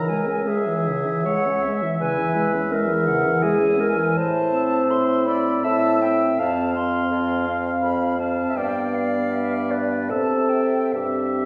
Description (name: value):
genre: classical, slow romantic movement for wind quintet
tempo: 71-84 BPM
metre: 3/4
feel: rubato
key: C major from 4.2 s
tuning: A4 = 439 Hz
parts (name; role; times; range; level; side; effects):
- silver concert flute; melody; 0.0-11.5 s; D5 to C6; -31 LUFS; equal; none
- mellow oboe; second line; 0.0-11.5 s; E5 to F5; -32 LUFS; equal; none
- clear clarinet; accompaniment; 0.0-11.5 s; G4 to F5; -26 LUFS; equal; none
- mellow French horn; accompaniment; 0.0-11.5 s; C#3 to C#4; -28 LUFS; equal; none
- warm bassoon; bass; 0.0-11.5 s; C#2 to C3; -28 LUFS; equal; none
room: wet recital hall reverb, RT60 1.4 s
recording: recorded in a church or concert hall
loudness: -21 LUFS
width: mono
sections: 0.0-11.5 A section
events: none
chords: 0.0 C#m; 2.0 C#m/E; 4.2 Am; 6.4 F; 8.6 G7; 10.1 C; 10.9 C/G